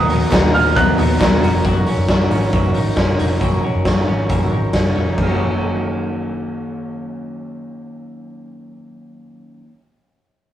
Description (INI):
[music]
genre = jangly indie pop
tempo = 136 BPM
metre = 4/4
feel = straight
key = F# major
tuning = A4 = 442 Hz
[part]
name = warm upright piano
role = melody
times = 0.0-1.4 s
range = D#6 to F#6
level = -20 LUFS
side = right 4 dB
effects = slapback echo
[part]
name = semi-hollow electric guitar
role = accompaniment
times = 0.0-9.8 s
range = D#3 to C#5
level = -25 LUFS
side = right 1 dB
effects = tremolo
[part]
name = electric guitar through a small old amp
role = arpeggios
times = 0.0-9.8 s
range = F#2 to A#4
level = -24 LUFS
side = left 1 dB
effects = none
[part]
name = vintage muted picked electric bass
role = bass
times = 0.0-9.6 s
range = E#1 to D#2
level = -21 LUFS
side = equal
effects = none
[part]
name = raw garage drum kit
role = drums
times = 0.1-5.3 s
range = crash cymbal, hi-hat, kick drum, ride cymbal, snare drum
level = -18 LUFS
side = equal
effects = none
[part]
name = group handclap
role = percussion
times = 0.3-1.3 s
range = none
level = -30 LUFS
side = right 1 dB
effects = none
[sound]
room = moderate stone room reverb, RT60 1.2 s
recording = rough rehearsal-room recording, warm saturation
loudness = -14 LUFS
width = side -12 dB against mid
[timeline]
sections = 0.0-1.6 A section; 1.6-5.2 B section; 5.2-8.7 C section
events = none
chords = 0.0 Bmaj7; 1.6 F#6